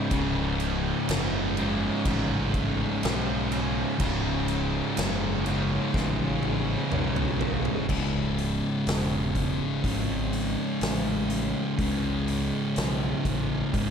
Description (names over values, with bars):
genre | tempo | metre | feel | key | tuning
stoner and doom metal | 62 BPM | 4/4 | straight | unclear | A4 = 440 Hz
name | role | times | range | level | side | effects
bowed-like drone | sustained chords | 0.0-13.9 s | C#3 to C#4 | -39 LUFS | equal | none
distorted electric guitar | riff | 0.0-7.9 s | C#2 to C#3 | -32 LUFS | equal | overdrive
thick fuzz guitar | riff | 0.0-13.9 s | C#2 to C#3 | -30 LUFS | left 10 dB | distortion
thick fuzz guitar | riff | 0.0-13.9 s | C#2 to C#3 | -30 LUFS | right 9 dB | distortion
fuzz fingered electric bass | bass | 0.1-13.9 s | C#1 to C#2 | -32 LUFS | equal | overdrive
oversized low-tuned drum kit | drums | 0.1-13.9 s | crash cymbal, hi-hat, kick drum, snare drum, toms | -32 LUFS | equal | none
room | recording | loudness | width
light reverb | none | -24 LUFS | side -7 dB against mid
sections
0.0-7.9 A section; 7.9-13.9 B section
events
drum fill 5.9-7.9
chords
0.0 C#5